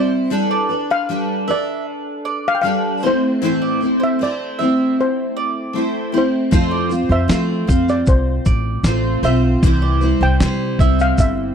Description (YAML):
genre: acoustic pop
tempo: 77 BPM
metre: 4/4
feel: straight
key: unclear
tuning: A4 = 439 Hz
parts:
  - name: steel pan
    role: melody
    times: 0.0-11.5 s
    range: C5 to G5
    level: -21 LUFS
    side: left 2 dB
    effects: none
  - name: picked steel-string acoustic guitar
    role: accompaniment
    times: 0.0-11.5 s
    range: A2 to C5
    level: -18 LUFS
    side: equal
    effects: double-tracked left and right
  - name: mandolin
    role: arpeggios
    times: 0.0-11.2 s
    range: B4 to F5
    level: -27 LUFS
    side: right 6 dB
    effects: none
  - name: upright bass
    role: bass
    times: 6.5-11.5 s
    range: G1 to F3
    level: -18 LUFS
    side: equal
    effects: none
  - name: dusty soul sampler-style drum kit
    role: drums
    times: 6.5-11.4 s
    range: kick drum, shaker, snare drum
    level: -17 LUFS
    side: equal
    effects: none
room: small room ambience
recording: dry, close 1970s-style studio recording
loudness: -15 LUFS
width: side -7 dB against mid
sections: 0.0-11.5 A section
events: none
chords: 0.3 Gadd9; 3.0 Am; 6.5 F; 9.6 C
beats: | 0.32 1.09 1.87 2.65 | 3.42 4.20 4.97 5.75 | 6.53 7.30 8.08 8.86 | 9.63 10.41 11.18